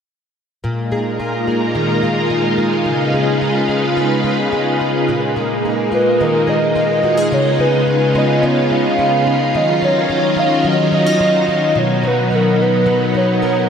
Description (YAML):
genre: dream pop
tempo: 108 BPM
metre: 4/4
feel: straight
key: unclear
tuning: A4 = 439 Hz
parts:
  - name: string machine, violins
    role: sustained chords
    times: 0.6-13.7 s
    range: Bb2 to Cb5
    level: -16 LUFS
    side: equal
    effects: ensemble chorus
  - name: fingerpicked plugged-in twelve-string acoustic guitar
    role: arpeggios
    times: 0.6-13.7 s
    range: Bb2 to A#4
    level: -19 LUFS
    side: left 2 dB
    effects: analog chorus, tape echo
  - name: warbly nostalgic lead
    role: melody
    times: 5.9-13.7 s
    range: Bb4 to F5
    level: -16 LUFS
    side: right 1 dB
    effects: chorus, tape echo
room: wet huge ambient reverb, RT60 7.7 s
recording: dreamy mix soaked in reverb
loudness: -13 LUFS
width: side -7 dB against mid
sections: 0.6-5.1 A section; 5.1-13.7 B section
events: none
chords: 0.6 Bb7sus4; 2.9 Db7; 5.1 Bb7sus4; 7.3 Db7; 9.5 Ebm9; 11.8 Bmaj7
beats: | 0.64 1.20 1.75 2.31 | 2.87 3.42 3.98 4.53 | 5.09 5.64 6.20 6.75 | 7.31 7.87 8.42 8.98 | 9.53 10.09 10.64 11.20 | 11.76 12.31 12.87 13.42